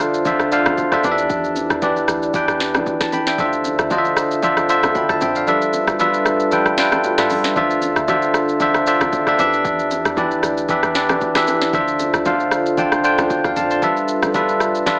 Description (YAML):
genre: amapiano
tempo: 115 BPM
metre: 4/4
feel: swing 55% on 16ths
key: D dorian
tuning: A4 = 439 Hz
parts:
  - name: bell-like tine electric piano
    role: accompaniment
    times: 0.0-15.0 s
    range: D3 to C6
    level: -19 LUFS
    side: equal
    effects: none
  - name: glass harmonica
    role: sustained chords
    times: 0.0-15.0 s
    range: G3 to E5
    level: -28 LUFS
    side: equal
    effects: sidechain pumping
  - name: afro-pop drum kit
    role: drums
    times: 0.0-15.0 s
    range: hi-hat, kick drum, rim click, shaker, snare drum, toms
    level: -25 LUFS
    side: equal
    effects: none
  - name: deep log drum bass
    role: bass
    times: 0.3-15.0 s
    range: F1 to F2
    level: -37 LUFS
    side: equal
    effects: none
  - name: congas and bongos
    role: percussion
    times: 0.3-15.0 s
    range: none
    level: -32 LUFS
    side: equal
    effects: none
room: light reverb, digital ambience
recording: AM radio sound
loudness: -18 LUFS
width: mono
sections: 0.0-15.0 A section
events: kick muted 5.5-7.6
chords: 0.0 Dm9; 1.0 Em7; 3.4 Dm9; 5.5 G13; 7.6 Dm9; 9.4 Em7; 11.7 Dm9; 13.8 G13